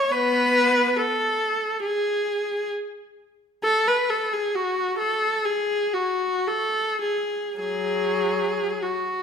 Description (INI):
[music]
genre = classical, free, expressive piece for unaccompanied viola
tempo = 48-70 BPM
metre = 4/4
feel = rubato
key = F# minor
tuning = A4 = 440 Hz
[part]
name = clear viola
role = solo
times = 0.0-9.2 s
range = F#3 to C#5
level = -21 LUFS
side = left 1 dB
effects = none
[sound]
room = moderate recital hall reverb, RT60 1.4 s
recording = minimal, uncompressed stereo recording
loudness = -21 LUFS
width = side -7 dB against mid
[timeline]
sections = 0.0-9.2 A section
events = none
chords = none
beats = | 0.11 0.97 1.83 2.72 | 3.64 4.54 5.43 6.47 | 7.60 8.84